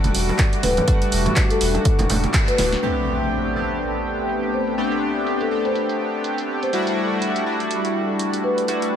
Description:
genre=deep house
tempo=123 BPM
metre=4/4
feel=swing 57% on 16ths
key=A dorian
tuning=A4 = 441 Hz
part: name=soft string machine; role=sustained chords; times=0.0-9.0 s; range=G3 to D6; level=-30 LUFS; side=left 1 dB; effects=phaser, ensemble chorus, sidechain pumping
part: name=chorused polysynth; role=stabs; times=0.0-9.0 s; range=G3 to G4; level=-22 LUFS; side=left 1 dB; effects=sidechain pumping, ping-pong delay
part: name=sub bass with octave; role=bass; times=0.0-2.7 s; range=D1 to E1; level=-24 LUFS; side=equal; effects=sidechain pumping
part: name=punchy analog drum machine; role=drums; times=0.0-8.9 s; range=crash cymbal, handclaps, hi-hat, snare drum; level=-26 LUFS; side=right 2 dB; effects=low-pass filter on hats, low-pass filter on snare, low-pass filter on cymbals
part: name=congas and bongos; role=percussion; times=0.0-2.7 s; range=none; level=-27 LUFS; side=right 3 dB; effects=none
part: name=electronic kick drum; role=drums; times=0.4-2.5 s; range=none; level=-19 LUFS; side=equal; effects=none
part: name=marimba with soft mallets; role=melody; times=0.6-8.6 s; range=A4 to C5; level=-26 LUFS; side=left 2 dB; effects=ping-pong delay
part: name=impact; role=sound effects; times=2.8-4.8 s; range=none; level=-29 LUFS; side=equal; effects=none
room=light reverb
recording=none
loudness=-18 LUFS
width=side -9 dB against mid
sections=0.0-2.8 A section; 2.8-9.0 B section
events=band accent 2.3; drum fill 2.6; impact 2.8-4.8; filter sweep on drum 2.8-9.0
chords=0.0 Em11; 2.8 Am11; 6.7 Em11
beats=0.39 | 0.88 1.36 1.85 2.34 | 2.83 3.32 3.80 4.29 | 4.78 5.27 5.75 6.24 | 6.73 7.22 7.71 8.19 | 8.68

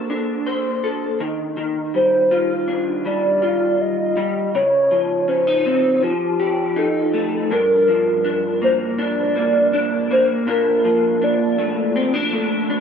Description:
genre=indie pop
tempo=81 BPM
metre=4/4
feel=straight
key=unclear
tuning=A4 = 438 Hz
part: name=electric guitar through a small old amp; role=accompaniment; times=0.0-12.8 s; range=G2 to C5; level=-20 LUFS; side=equal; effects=ensemble chorus, warbly pitch drift
part: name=hollow clarinet-like synth lead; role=melody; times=2.0-12.0 s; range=G4 to Eb5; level=-18 LUFS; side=equal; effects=analog chorus, ping-pong delay
room=moderate spring reverb, RT60 3.1 s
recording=lossy compression artefacts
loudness=-16 LUFS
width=side -7 dB against mid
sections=0.0-7.5 A section; 7.5-12.8 B section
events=none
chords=0.0 Bbmaj9; 1.2 Ebmaj9; 4.5 Dbmaj9; 6.0 F9; 7.5 Gm7; 10.5 Bbmaj7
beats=0.10 0.84 | 1.58 2.32 3.06 3.80 | 4.54 5.29 6.03 6.77 | 7.51 8.25 8.99 9.73 | 10.47 11.21 11.96 12.70

